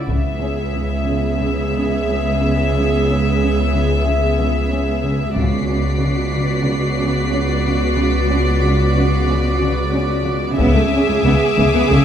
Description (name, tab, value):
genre	cinematic, suspense film score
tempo	91 BPM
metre	4/4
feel	straight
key	C# phrygian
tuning	A4 = 440 Hz
part	clear studio violin section	melody	0.1-12.0 s	D5 to E5	-23 LUFS	left 2 dB	none
part	warm studio viola section	accompaniment	0.1-12.0 s	G#3 to G#4	-21 LUFS	right 1 dB	none
part	dark studio cello section	riff	0.1-12.0 s	C#3 to C#4	-23 LUFS	right 1 dB	none
part	dark studio cello section	bass	0.1-12.0 s	C#2	-22 LUFS	right 1 dB	none
part	warm studio double bass section	bass	0.1-12.0 s	C#2	-22 LUFS	equal	none
part	taiko ensemble	drums	0.1-11.9 s	none	-22 LUFS	left 2 dB	none
part	rich studio violin section	texture	5.4-12.0 s	G#5 to B#6	-28 LUFS	left 4 dB	none
room	wet scoring stage reverb, RT60 1.4 s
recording	minimal, uncompressed stereo recording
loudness	-15 LUFS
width	side -9 dB against mid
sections	0.1-12.0 A section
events	none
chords	0.1 C#m7; 5.4 Bmadd9/C#; 10.6 C#m7